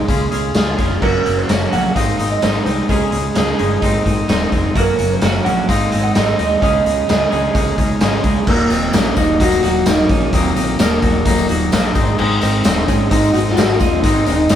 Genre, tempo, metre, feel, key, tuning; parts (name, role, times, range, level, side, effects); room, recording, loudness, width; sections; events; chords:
indie rock; 129 BPM; 4/4; straight; Eb dorian; A4 = 440 Hz
electric guitar through a small old amp; melody; 0.0-14.6 s; Ab3 to Gb5; -19 LUFS; right 1 dB
twangy electric guitar; riff; 0.0-14.6 s; Eb2 to Ab4; -22 LUFS; left 6 dB
twelve-string electric guitar; riff; 0.0-14.6 s; Eb2 to Ab4; -21 LUFS; right 4 dB
growling fingered electric bass; bass; 0.0-14.6 s; Eb1 to Eb2; -22 LUFS; equal; overdrive
raw garage drum kit; drums; 0.1-14.6 s; crash cymbal, hi-hat, kick drum, snare drum, tambourine; -17 LUFS; left 1 dB
tambourine; percussion; 8.7-14.6 s; -36 LUFS; left 8 dB
light reverb; band playing live in one room; -13 LUFS; side -10 dB against mid
0.0-1.0 A section; 1.0-8.5 B section; 8.5-14.6 C section
0.1 Db; 1.0 Gb; 2.0 Ab; 2.9 Dbsus2; 3.8 Ab; 4.8 Gb; 5.7 Ab; 6.6 Dbsus2; 8.5 Ebm; 12.0 Ab